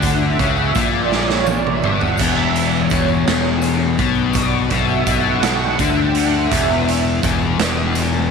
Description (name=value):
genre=psychedelic rock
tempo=56 BPM (dotted quarters)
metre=6/8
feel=straight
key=unclear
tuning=A4 = 440 Hz
part: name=soft string machine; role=sustained chords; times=0.0-7.0 s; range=C#5 to G5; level=-23 LUFS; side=right 11 dB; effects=ensemble chorus
part: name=overdriven electric guitar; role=riff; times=0.0-8.3 s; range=E2 to D3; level=-18 LUFS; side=left 12 dB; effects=flanger
part: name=fuzz fingered electric bass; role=bass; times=0.0-8.3 s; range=E1 to D2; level=-22 LUFS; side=right 1 dB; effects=overdrive
part: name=raw garage drum kit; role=drums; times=0.0-8.1 s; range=crash cymbal, hi-hat, kick drum, snare drum, toms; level=-21 LUFS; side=right 6 dB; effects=none
part: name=tambourine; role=percussion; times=0.0-8.2 s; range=none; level=-37 LUFS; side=left 13 dB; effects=none
room=light reverb, small room ambience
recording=1960s-style stereo with parts hard left and right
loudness=-15 LUFS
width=side -5 dB against mid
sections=0.0-8.3 A section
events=string machine solo 0.0-8.3; drum fill 1.1-2.2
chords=0.0 F#5; 2.2 Em7